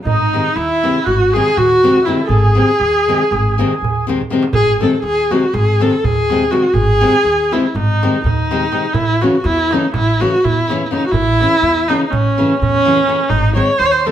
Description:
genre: balkan folk, Balkan wedding band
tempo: 245 BPM (eighths)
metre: 9/8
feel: straight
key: G# phrygian dominant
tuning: A4 = 439 Hz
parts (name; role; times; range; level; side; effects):
- rich viola; melody; 0.1-14.1 s; C#4 to C#5; -14 LUFS; equal; slapback echo
- mellow accordion; second line; 0.1-4.1 s; D#4 to A4; -21 LUFS; right 2 dB; none
- upright bass; bass; 0.1-14.1 s; G#1 to E2; -19 LUFS; equal; none
- darbuka; percussion; 0.1-14.1 s; none; -22 LUFS; right 4 dB; none
- nylon-string guitar; accompaniment; 0.3-14.1 s; B#2 to D#4; -18 LUFS; left 3 dB; none
room: wet small room reverb, RT60 0.5 s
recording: band playing live in one room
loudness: -12 LUFS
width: side -10 dB against mid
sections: 0.0-4.5 A section; 4.5-14.1 B section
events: speeding up 0.0-14.1; drum fill 4.1-4.5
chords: 0.0 G#; 8.9 A; 13.3 G#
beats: | 0.05 0.30 0.55 0.80 1.05 1.30 1.54 1.79 2.04 | 2.29 2.54 2.79 3.04 3.28 3.53 3.78 4.03 4.27 | 4.52 4.77 5.01 5.26 5.51 5.75 6.00 6.24 6.49 | 6.74 6.98 7.22 7.47 7.71 7.96 8.20 8.45 8.69 | 8.94 9.18 9.42 9.67 9.91 10.15 10.40 10.64 10.88 | 11.12 11.37 11.61 11.85 12.09 12.33 12.57 12.81 13.05 | 13.29 13.54 13.78 14.02

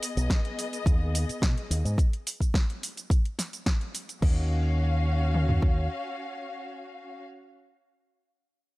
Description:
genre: nu-disco, nu disco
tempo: 107 BPM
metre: 4/4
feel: straight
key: Eb minor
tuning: A4 = 440 Hz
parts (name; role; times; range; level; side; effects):
- dark studio string section; sustained chords; 0.0-7.2 s; B3 to F5; -35 LUFS; left 2 dB; sidechain pumping
- house drum kit; drums; 0.0-4.3 s; crash cymbal, hi-hat, shaker, snare drum; -33 LUFS; right 1 dB; none
- fingered electric bass with an envelope filter; bass; 0.2-5.9 s; B1 to B2; -26 LUFS; equal; none
- house drum kit; drums; 0.3-5.8 s; kick drum, toms; -24 LUFS; equal; none
room: little or no reverb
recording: none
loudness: -25 LUFS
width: side -20 dB against mid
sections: 0.0-4.2 A section; 4.2-6.5 B section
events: drop 0.0-4.2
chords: 0.0 B6; 4.2 Ebm9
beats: 0.30 0.86 1.42 | 1.99 2.55 3.11 3.67 | 4.23 4.79 5.35 5.91

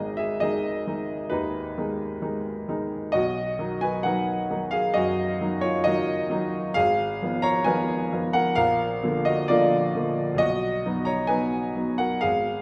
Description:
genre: classical, romantic character piece for solo piano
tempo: 66 BPM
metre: 4/4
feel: rubato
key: G# minor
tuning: A4 = 440 Hz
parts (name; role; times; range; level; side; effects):
- warm baby grand piano; solo; 0.0-12.6 s; G#1 to Bb5; -25 LUFS; equal; none
room: wet recital hall reverb, RT60 1.7 s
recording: faint mains hum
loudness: -25 LUFS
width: mono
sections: 0.0-12.6 A section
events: none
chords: 0.0 G#m; 3.2 B; 6.8 Fm7b5/Ab; 8.6 Bb; 10.4 B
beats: 0.42 1.33 2.24 | 3.15 4.05 4.96 5.86 | 6.76 7.68 8.59 9.50 | 10.41 11.30 12.23

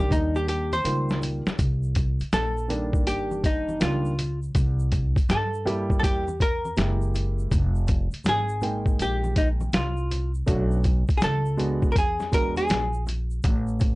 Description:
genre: hip hop, jazz-hop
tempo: 81 BPM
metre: 4/4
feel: swing 65% on 16ths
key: unclear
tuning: A4 = 440 Hz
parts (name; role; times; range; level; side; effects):
- archtop guitar, miked and amplified; melody; 0.0-13.0 s; Eb4 to C5; -27 LUFS; equal; none
- dark concert grand piano; accompaniment; 0.0-12.8 s; Eb3 to G5; -30 LUFS; right 1 dB; none
- upright bass; bass; 0.0-14.0 s; F1 to G2; -26 LUFS; equal; none
- lo-fi sampler-style drum kit; drums; 0.1-14.0 s; hi-hat, kick drum, snare drum; -24 LUFS; equal; overdrive, vintage 12-bit sampler grit
- egg shaker and congas; percussion; 0.1-14.0 s; none; -40 LUFS; left 1 dB; none
room: little or no reverb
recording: dry, gritty hardware recording, transformer saturation, nothing above 10.6 kHz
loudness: -22 LUFS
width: side -21 dB against mid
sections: 0.0-1.6 A section; 1.6-14.0 B section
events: drum fill 0.1-1.6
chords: 0.0 Cm9; 4.5 C7b13; 7.5 Fm11; 10.5 Bm9; 12.0 E7; 13.4 N.C.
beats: 0.10 0.85 | 1.59 2.33 3.07 3.81 | 4.55 5.29 6.03 6.77 | 7.51 8.25 8.99 9.73 | 10.48 11.22 11.96 12.70 | 13.44

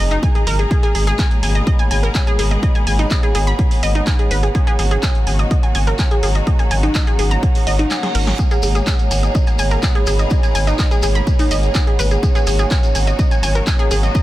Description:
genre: melodic techno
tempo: 125 BPM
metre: 4/4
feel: straight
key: G# minor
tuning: A4 = 436 Hz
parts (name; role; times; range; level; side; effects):
- bright studio string section; sustained chords; 0.0-14.2 s; B2 to G#4; -27 LUFS; left 1 dB; sidechain pumping
- analog pluck; arpeggios; 0.0-14.2 s; D#4 to B5; -22 LUFS; equal; chorus, sidechain pumping, tape echo
- round analog bass; bass; 0.0-14.1 s; F#1 to G#1; -17 LUFS; equal; sidechain pumping
- warbly tape-like pad; texture; 0.0-14.2 s; C#5 to B5; -26 LUFS; right 3 dB; chorus, built-in reverb, phaser, sidechain pumping
- punchy analog drum machine; drums; 0.1-14.2 s; handclaps, hi-hat, snare drum; -26 LUFS; right 2 dB; none
- electronic kick drum; drums; 0.2-14.2 s; none; -16 LUFS; equal; none
- reverse cymbal; sound effects; 7.6-8.4 s; none; -31 LUFS; right 6 dB; none
- shekere; percussion; 8.4-14.2 s; none; -30 LUFS; left 4 dB; none
room: little or no reverb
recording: dense, heavily limited modern master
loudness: -14 LUFS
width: side -15 dB against mid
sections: 0.0-14.2 A section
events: reverse cymbal 7.6-8.4; kick drops out 7.9-8.4; drum fill 7.9-8.4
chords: 0.0 D#m7; 0.7 G#madd9; 4.5 D#m7/G#; 8.4 G#madd9; 12.2 D#m7/G#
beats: 0.23 | 0.71 1.19 1.67 2.15 | 2.63 3.11 3.59 4.07 | 4.55 5.03 5.51 5.99 | 6.47 6.95 7.43 7.91 | 8.39 8.87 9.35 9.83 | 10.31 10.79 11.27 11.75 | 12.23 12.71 13.19 13.67 | 14.15

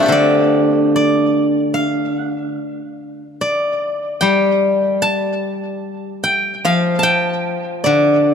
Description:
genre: chinese traditional, Chinese solo plucked strings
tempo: 74 BPM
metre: 4/4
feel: rubato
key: G shang mode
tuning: A4 = 440 Hz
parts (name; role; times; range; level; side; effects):
- steel-string zither; solo; 0.0-8.3 s; D3 to A5; -14 LUFS; equal; tape echo
room: light reverb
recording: close, detailed microphones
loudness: -14 LUFS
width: side -7 dB against mid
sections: 0.0-8.3 A section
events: none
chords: none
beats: | 0.10 0.92 1.73 2.56 | 3.41 4.24 5.05 5.87 | 6.68 7.48 8.27

